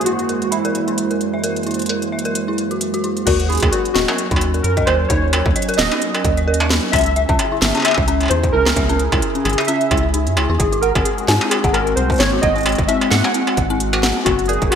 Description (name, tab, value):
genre	IDM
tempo	131 BPM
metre	4/4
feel	swing 56% on 16ths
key	unclear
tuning	A4 = 439 Hz
part	warbly lo-fi synth keys	melody	0.0-14.8 s	E4 to F#5	-20 LUFS	equal	chorus, ping-pong delay
part	warbly tape-like pad	sustained chords	0.0-14.8 s	F#2 to A#4	-24 LUFS	right 2 dB	chorus, built-in reverb
part	industrial drum kit	drums	0.0-14.8 s	crash cymbal, hi-hat, snare drum, struck metal	-20 LUFS	right 1 dB	gated reverb
part	bubbling stepped-filter texture	texture	0.0-3.3 s	B#4	-34 LUFS	right 7 dB	chorus, built-in reverb
part	dark detuned synth bell	arpeggios	0.1-14.8 s	B#3 to F#5	-23 LUFS	left 3 dB	chorus, phaser, ping-pong delay
part	rubbery square bass	bass	3.3-14.7 s	D#1 to G#2	-20 LUFS	equal	none
part	electronic kick drum	drums	3.3-14.7 s	none	-22 LUFS	equal	distortion
room	moderate lush hall reverb, RT60 1.8 s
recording	bright 1980s-style digital production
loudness	-15 LUFS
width	side -7 dB against mid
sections	0.0-3.3 A section; 3.3-14.8 B section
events	none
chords	0.0 F#7; 3.3 D#m7; 6.9 C#m; 10.6 G#7